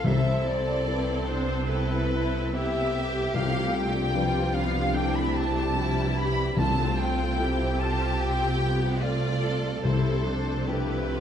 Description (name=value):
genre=cinematic, emotional film score for orchestra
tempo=74 BPM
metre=4/4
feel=rubato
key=unclear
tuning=A4 = 440 Hz
part: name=warm symphonic violin section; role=melody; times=0.0-11.2 s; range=D4 to A4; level=-35 LUFS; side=left 3 dB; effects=none
part: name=clear clarinet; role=second line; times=0.0-11.2 s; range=B4 to B5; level=-36 LUFS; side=left 1 dB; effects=none
part: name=mellow small flute group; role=second line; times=0.0-11.2 s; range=B4 to B5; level=-35 LUFS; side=equal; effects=none
part: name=rich symphonic violin section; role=second line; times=0.0-11.2 s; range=B4 to B5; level=-36 LUFS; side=equal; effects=none
part: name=felt-muted upright piano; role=accompaniment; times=0.0-11.2 s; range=C2 to B4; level=-34 LUFS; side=left 3 dB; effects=none
part: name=warm symphonic viola section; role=accompaniment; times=0.0-11.2 s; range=G3 to G4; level=-33 LUFS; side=equal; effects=none
part: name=dark French horn section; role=sustained chords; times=0.0-11.2 s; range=F3 to C5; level=-34 LUFS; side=left 3 dB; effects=none
part: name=concert harp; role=arpeggios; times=0.0-11.2 s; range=C3 to B4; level=-36 LUFS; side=left 9 dB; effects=none
part: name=warm symphonic cello section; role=bass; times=0.0-11.2 s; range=C3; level=-32 LUFS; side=right 2 dB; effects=none
part: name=warm symphonic double bass section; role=bass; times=0.0-11.2 s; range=C2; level=-30 LUFS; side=right 2 dB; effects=none
part: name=timpani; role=percussion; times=0.0-11.1 s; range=C3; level=-30 LUFS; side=left 2 dB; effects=none
room=moderate scoring stage reverb, RT60 1.8 s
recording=none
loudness=-24 LUFS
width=side -9 dB against mid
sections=0.0-11.2 A section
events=none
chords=0.1 Amadd9/C; 3.4 G7/C; 6.6 F/C; 9.8 Dm7/C